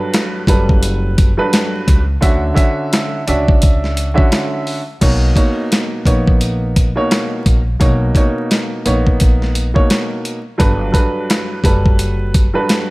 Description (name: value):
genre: hip hop, boom-bap hip-hop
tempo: 86 BPM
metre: 4/4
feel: swing 58% on 16ths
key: B major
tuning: A4 = 440 Hz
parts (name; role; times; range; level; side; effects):
- dark upright piano; accompaniment; 0.0-12.9 s; G2 to E5; -18 LUFS; right 1 dB; cassette tape, high-pass filter, low-pass filter
- dusty soul sampler-style drum kit; drums; 0.1-12.9 s; crash cymbal, hi-hat, kick drum, snare drum; -14 LUFS; equal; none
- upright bass; bass; 0.5-12.5 s; F#1 to D2; -18 LUFS; equal; none
room: little or no reverb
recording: vinyl crackle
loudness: -12 LUFS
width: side -22 dB against mid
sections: 0.0-5.0 A section; 5.0-12.9 B section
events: none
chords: 0.0 Gmaj9; 2.2 Dmaj9; 5.0 Bmaj9; 10.6 Gmaj9